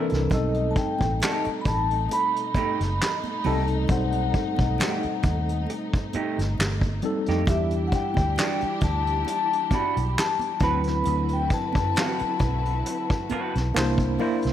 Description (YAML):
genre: R&B, neo-soul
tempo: 67 BPM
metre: 4/4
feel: swing 55% on 16ths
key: unclear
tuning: A4 = 440 Hz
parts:
  - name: electric guitar through a small old amp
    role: second line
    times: 0.0-14.4 s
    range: G3 to B4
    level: -33 LUFS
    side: right 5 dB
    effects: lush chorus
  - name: tine electric piano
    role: accompaniment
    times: 0.0-14.5 s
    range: E3 to C5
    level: -29 LUFS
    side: left 1 dB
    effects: overdrive, fast stereo tremolo
  - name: dark studio string section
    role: sustained chords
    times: 0.0-14.5 s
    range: B2 to B4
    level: -34 LUFS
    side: right 1 dB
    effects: none
  - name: vintage muted fingered electric bass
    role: bass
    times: 0.1-14.5 s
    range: F#1 to F#2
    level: -26 LUFS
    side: equal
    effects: none
  - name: vintage brush drum kit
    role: drums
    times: 0.1-14.5 s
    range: handclaps, hi-hat, kick drum, snare drum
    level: -27 LUFS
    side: equal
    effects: none
  - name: vibraphone with soft mallets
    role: melody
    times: 0.3-14.2 s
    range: D#5 to B5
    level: -28 LUFS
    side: left 3 dB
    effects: none
  - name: congas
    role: percussion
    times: 0.3-14.4 s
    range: none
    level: -38 LUFS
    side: right 8 dB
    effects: none
room: light reverb, small room reverb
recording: none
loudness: -22 LUFS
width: side -11 dB against mid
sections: 0.0-14.5 A section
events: none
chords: 0.3 B7b9b13; 7.5 Em7; 10.6 D13; 13.7 C9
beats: | 0.31 1.21 2.10 3.00 | 3.89 4.79 5.68 6.58 | 7.47 8.37 9.27 10.16 | 11.06 11.95 12.85 13.74